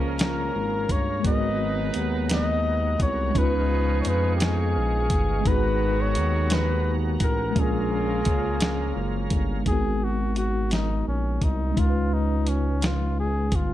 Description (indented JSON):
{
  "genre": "slow six-eight R&B",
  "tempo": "57 BPM (dotted quarters)",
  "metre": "6/8",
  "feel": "straight",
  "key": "G# dorian",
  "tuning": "A4 = 444 Hz",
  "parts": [
    { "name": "mellow tine electric piano", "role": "accompaniment", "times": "0.0-13.7 s", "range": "G#3 to B4", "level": "-29 LUFS", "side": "equal", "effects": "medium stereo tremolo" },
    { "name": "tonewheel organ", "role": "sustained chords", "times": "0.0-9.6 s", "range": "B3 to C#6", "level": "-35 LUFS", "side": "right 2 dB", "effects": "chorus vibrato, wide subtle chorus" },
    { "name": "clear horn section", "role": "stabs", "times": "0.0-9.3 s", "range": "C#3 to B4", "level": "-35 LUFS", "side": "right 3 dB", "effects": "none" },
    { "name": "smooth synth bass", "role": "bass", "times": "0.0-13.7 s", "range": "F#1 to E#2", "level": "-26 LUFS", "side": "equal", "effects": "none" },
    { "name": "warm flugelhorn", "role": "melody", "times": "0.2-13.7 s", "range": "C#4 to D#5", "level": "-28 LUFS", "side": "left 2 dB", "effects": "slapback echo" },
    { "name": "dusty soul sampler-style drum kit", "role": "drums", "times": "0.2-13.7 s", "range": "hi-hat, kick drum, snare drum", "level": "-26 LUFS", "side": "equal", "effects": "none" }
  ],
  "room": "little or no reverb",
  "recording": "dark, warm production",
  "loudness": "-22 LUFS",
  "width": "side -13 dB against mid",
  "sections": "0.0-9.7 A section; 9.7-13.7 B section",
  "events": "flugelhorn solo 9.7-13.7",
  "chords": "0.0 A#m7; 1.2 G#m9; 3.4 C#9; 5.5 G#m9; 7.6 A#m7; 9.7 G#m9; 11.8 C#9"
}